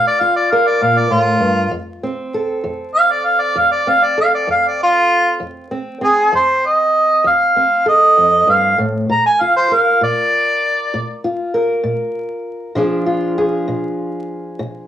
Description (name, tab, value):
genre	blues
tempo	65 BPM (dotted quarters)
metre	12/8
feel	straight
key	F mixolydian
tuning	A4 = 440 Hz
part	mellow harmonica	melody	0.0-11.2 s	F4 to Bb5	-12 LUFS	right 1 dB	cassette tape, plate reverb
part	fingerpicked old ladder-braced acoustic guitar	accompaniment	0.0-14.9 s	F2 to Bb4	-20 LUFS	equal	cassette tape, plate reverb
room	moderate studio reverb, RT60 0.6 s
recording	home recording on cassette, vinyl crackle, small room ambience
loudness	-13 LUFS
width	side -10 dB against mid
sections	0.0-14.9 A section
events	none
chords	0.0 Bb5; 1.7 F; 9.1 Bb; 12.8 Bdim7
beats	0.80 | 1.72 2.64 3.56 4.48 | 5.40 6.32 7.24 8.16 | 9.08 9.99 10.91 11.83 | 12.75 13.67 14.59